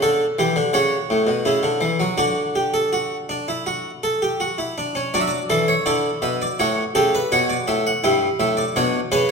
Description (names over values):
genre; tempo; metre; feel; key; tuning
classical, baroque-style 3-part fugue for harpsichord; 82 BPM; 4/4; straight; D major; A4 = 440 Hz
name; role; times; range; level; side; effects
harpsichord; solo; 0.0-9.3 s; G2 to G5; -18 LUFS; equal; none
room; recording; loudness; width
wet recital hall reverb, RT60 1.8 s; minimal, uncompressed stereo recording; -18 LUFS; side -5 dB against mid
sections
0.0-5.1 A section; 5.1-9.3 B section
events
none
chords
0.0 Em7; 0.7 A; 2.2 D; 6.6 A; 8.0 A7/G